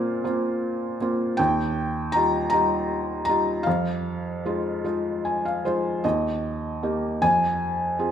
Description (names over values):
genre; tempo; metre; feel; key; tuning
classical, lyrical solo piano; 52 BPM (dotted quarters); 6/8; rubato; unclear; A4 = 440 Hz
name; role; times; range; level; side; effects
felt-muted upright piano; solo; 0.0-8.1 s; Eb2 to Bb5; -22 LUFS; equal; none
room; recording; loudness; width
moderate scoring stage reverb, RT60 1.8 s; minimal, uncompressed stereo recording; -22 LUFS; side -9 dB against mid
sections
0.0-6.0 A section; 6.0-8.1 B section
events
felt piano fill 4.8-6.0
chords
0.0 Bbsus2; 1.4 Ebadd9; 3.7 Fm7; 6.0 Eb; 7.2 Fm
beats
0.24 | 1.39 2.52 | 3.67 4.84 | 6.04 7.22